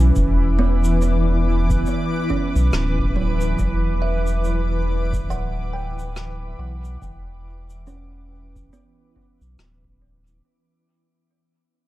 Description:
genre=ambient dub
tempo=70 BPM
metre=4/4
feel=swing 60% on 16ths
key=E dorian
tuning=A4 = 442 Hz
part: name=granular cloud pad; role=sustained chords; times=0.0-10.4 s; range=E3 to D6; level=-26 LUFS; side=equal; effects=built-in reverb
part: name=kalimba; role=arpeggios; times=0.0-10.6 s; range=F#3 to G5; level=-28 LUFS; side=right 4 dB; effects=low-pass filter, tape echo
part: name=warm sub bass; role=bass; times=0.0-10.4 s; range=D1 to B1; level=-20 LUFS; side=equal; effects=none
part: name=electronic kick drum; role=drums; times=0.2-10.0 s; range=none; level=-26 LUFS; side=equal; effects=none
part: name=shaker and rim click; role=drums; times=0.2-10.4 s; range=none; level=-34 LUFS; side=left 2 dB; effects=dub echo
room=studio ambience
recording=dark, warm production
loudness=-18 LUFS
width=side -16 dB against mid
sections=0.0-10.4 A section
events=fade-out 0.0-10.4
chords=0.0 Em7

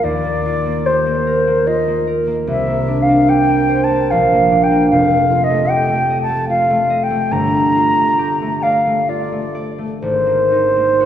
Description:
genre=classical, impressionist duo for flute and harp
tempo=61-77 BPM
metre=3/4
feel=rubato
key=unclear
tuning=A4 = 440 Hz
part: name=mellow concert flute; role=melody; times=0.0-11.1 s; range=C5 to Bb5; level=-15 LUFS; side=equal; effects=none
part: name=concert harp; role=accompaniment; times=0.0-11.1 s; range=F1 to Eb5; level=-17 LUFS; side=right 1 dB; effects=none
room=wet concert hall reverb, RT60 1.9 s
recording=heard from further back in the room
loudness=-13 LUFS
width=side -10 dB against mid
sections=0.0-11.1 A section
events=none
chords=0.0 Ebadd9; 2.5 Csus2; 4.1 Bbadd9; 4.9 F9; 7.3 Gm9; 10.0 Abadd9

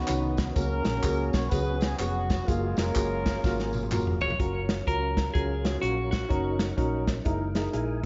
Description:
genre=uptempo gospel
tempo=126 BPM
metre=4/4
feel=swing 62% on 8ths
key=F# major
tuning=A4 = 440 Hz
part: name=dark horn section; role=melody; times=0.0-4.2 s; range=G#3 to C#5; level=-34 LUFS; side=equal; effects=diffuse ambient delay
part: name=warm baby grand piano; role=accompaniment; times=0.0-8.0 s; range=C#3 to C#5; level=-35 LUFS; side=equal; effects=none
part: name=tonewheel organ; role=sustained chords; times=0.0-8.1 s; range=D#3 to G#5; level=-38 LUFS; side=equal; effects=slow rotary speaker, chorus vibrato
part: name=hollow-body short-scale fingered electric bass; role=bass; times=0.1-8.1 s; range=E#1 to C#2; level=-34 LUFS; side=equal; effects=none
part: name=natural country drum kit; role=drums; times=0.1-7.9 s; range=hi-hat, kick drum, snare drum, toms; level=-32 LUFS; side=equal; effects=none
part: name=handclaps and tambourine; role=percussion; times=0.1-4.3 s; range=none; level=-44 LUFS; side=equal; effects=none
part: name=clean electric guitar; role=melody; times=4.2-8.0 s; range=F#4 to C#5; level=-35 LUFS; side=equal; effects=diffuse ambient delay
room=moderate plate reverb, RT60 1.5 s, small room ambience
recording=dreamy mix soaked in reverb, nothing above 7.6 kHz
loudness=-27 LUFS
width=mono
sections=0.0-4.4 A section; 4.4-8.1 B section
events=drum fill 3.4-4.4; tonewheel organ fill 7.5-8.1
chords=0.0 C#9sus4; 0.6 F#; 1.5 C#7sus4; 2.5 F#maj9; 4.4 F#maj7; 6.3 D#m7/F#; 7.3 F#13

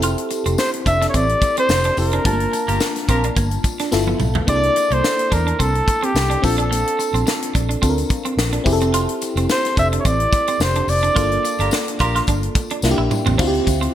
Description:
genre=polished 1980s jazz-funk pop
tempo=108 BPM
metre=4/4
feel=swing 54% on 16ths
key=unclear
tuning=A4 = 439 Hz
part: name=FM electric piano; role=accompaniment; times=0.0-13.9 s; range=A3 to A5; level=-23 LUFS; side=left 1 dB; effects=wide subtle chorus
part: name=electric guitar at the edge of break-up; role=riff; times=0.0-13.9 s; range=G3 to F4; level=-26 LUFS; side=right 5 dB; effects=wide subtle chorus
part: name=vintage muted fingered electric bass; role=bass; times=0.0-13.9 s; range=F1 to E2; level=-21 LUFS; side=equal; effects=none
part: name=tight funk drum kit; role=drums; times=0.0-13.9 s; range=crash cymbal, hi-hat, kick drum, snare drum, toms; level=-22 LUFS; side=equal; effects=gated reverb
part: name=tambourine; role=percussion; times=0.0-13.8 s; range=none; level=-34 LUFS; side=left 6 dB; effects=none
part: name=warm flugelhorn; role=melody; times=0.6-12.0 s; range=G4 to E5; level=-20 LUFS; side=equal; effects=digital delay
part: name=warm horn section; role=second line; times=2.7-3.3, 11.6-12.2 s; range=F4 to Bb4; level=-26 LUFS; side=left 1 dB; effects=none
room=moderate plate reverb, RT60 1.4 s, studio ambience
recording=bright 1980s-style digital production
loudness=-16 LUFS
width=side -11 dB against mid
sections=0.0-13.4 A section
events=band accent 2.3-4.5, 11.2-13.4; drum fill 3.9-4.5, 12.8-13.4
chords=0.0 Fmaj9; 2.3 Gm7; 3.9 G13; 4.5 C13; 6.4 Bbmaj9; 8.7 Fmaj9; 11.2 Gm7; 12.8 C9; 13.4 Dm11

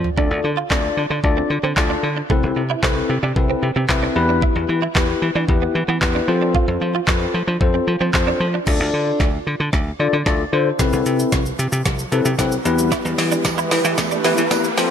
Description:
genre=dance-pop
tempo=113 BPM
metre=4/4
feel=straight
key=unclear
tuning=A4 = 440 Hz
part: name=dry thumbed slap bass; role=bass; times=0.0-14.9 s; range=C2 to F3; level=-21 LUFS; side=equal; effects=sidechain pumping
part: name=smooth R&B drum kit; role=drums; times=0.0-14.9 s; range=crash cymbal, handclaps, hi-hat, kick drum, shaker, snare drum, toms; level=-21 LUFS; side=equal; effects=none
part: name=tine electric piano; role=accompaniment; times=0.2-14.9 s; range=B3 to B5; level=-21 LUFS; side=left 4 dB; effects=lush chorus, sidechain pumping
part: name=direct-recorded clean electric guitar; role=riff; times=0.2-8.6, 12.9-14.7 s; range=A3 to F4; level=-26 LUFS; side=right 7 dB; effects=ensemble chorus
part: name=riser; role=sound effects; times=11.2-14.9 s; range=none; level=-29 LUFS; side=right 2 dB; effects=none
part: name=warm analog pad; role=sustained chords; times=13.3-14.9 s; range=E3 to B4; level=-23 LUFS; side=right 2 dB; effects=chorus, sidechain pumping
part: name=tambourine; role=percussion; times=13.2-14.9 s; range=none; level=-34 LUFS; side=right 10 dB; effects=none
room=light reverb, digital ambience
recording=high-pass filter, lossy compression artefacts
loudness=-16 LUFS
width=side -8 dB against mid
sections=0.0-8.7 A section; 8.7-14.9 B section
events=drum fill 0.0, 8.7-14.9; tine electric piano fill 3.6-4.4; build-up 8.7-14.9; filter sweep 8.7-14.9; riser 11.2-14.9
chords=0.2 Dm; 2.3 Amadd9/C; 4.2 Em; 6.3 F; 8.7 Dm; 10.8 Amadd9/C; 12.7 Em

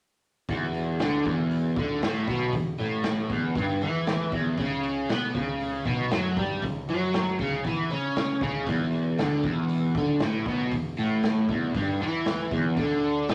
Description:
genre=psychedelic rock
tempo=117 BPM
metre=4/4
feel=straight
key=unclear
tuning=A4 = 438 Hz
part: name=crunchy overdriven guitar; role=riff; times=0.5-13.3 s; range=E2 to C#4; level=-28 LUFS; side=equal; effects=rotary speaker
part: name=growling picked electric bass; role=bass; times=0.5-13.3 s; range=E1 to C#3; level=-40 LUFS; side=equal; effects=overdrive
part: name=raw garage drum kit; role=drums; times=0.5-13.3 s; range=hi-hat, kick drum, snare drum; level=-34 LUFS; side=equal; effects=none
room=light reverb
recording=none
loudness=-27 LUFS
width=mono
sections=0.5-13.3 A section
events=none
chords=0.5 N.C.; 4.6 Bsus24; 8.7 N.C.; 12.8 D5

